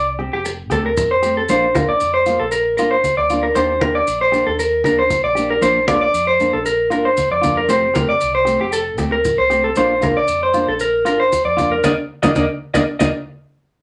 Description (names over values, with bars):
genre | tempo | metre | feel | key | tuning
highlife guitar band | 116 BPM | 4/4 | straight | Bb major | A4 = 441 Hz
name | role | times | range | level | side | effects
electric guitar through a small old amp | arpeggios | 0.0-13.1 s | G4 to Eb5 | -18 LUFS | equal | none
hollow-body short-scale fingered electric bass | bass | 0.0-13.1 s | F1 to F2 | -34 LUFS | equal | none
clean electric guitar | accompaniment | 0.2-13.1 s | Eb3 to G4 | -24 LUFS | equal | none
congas | percussion | 0.2-13.1 s | none | -26 LUFS | equal | none
maracas | percussion | 0.5-13.1 s | none | -36 LUFS | equal | none
room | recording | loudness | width
wet small room reverb, RT60 0.5 s | none | -17 LUFS | mono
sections
0.0-13.8 A section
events
band accent 11.8-13.8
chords
0.0 Fadd9; 1.5 Bb; 3.6 Ebmaj7; 5.6 Bb; 7.7 Fadd9; 9.8 Bb; 11.8 Eb5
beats
0.46 0.97 | 1.49 2.01 2.52 3.04 | 3.56 4.08 4.59 5.11 | 5.63 6.14 6.66 7.18 | 7.69 8.21 8.73 9.25 | 9.76 10.28 10.80 11.32 | 11.83 12.35 12.87